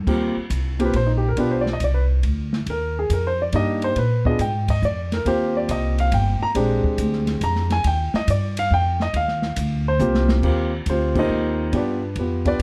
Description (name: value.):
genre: jazz piano trio.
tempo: 139 BPM.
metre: 3/4.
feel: swing 68% on 8ths.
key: Eb major.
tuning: A4 = 440 Hz.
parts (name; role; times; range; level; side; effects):
upright bass; bass; 0.0-12.6 s; G1 to Bb2; -25 LUFS; equal; none.
warm grand piano; melody; 0.1-12.6 s; Ab3 to Bb5; -24 LUFS; equal; plate reverb.
open jazz drum kit; drums; 0.1-12.6 s; crash cymbal, hi-hat, kick drum, ride cymbal, snare drum; -30 LUFS; equal; none.
room: light reverb.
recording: dark, warm production.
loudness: -21 LUFS.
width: mono.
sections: 0.1-10.4 A section; 10.4-12.6 B section.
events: grand piano solo 0.1-10.4; drum fill 10.0-10.4; band accent 11.1.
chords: 0.1 Eb69; 1.4 G7 (rootless); 2.7 Ebmaj9; 4.0 Bb7b9; 5.3 Eb69; 6.6 Bb13; 7.8 Eb69; 11.7 G7.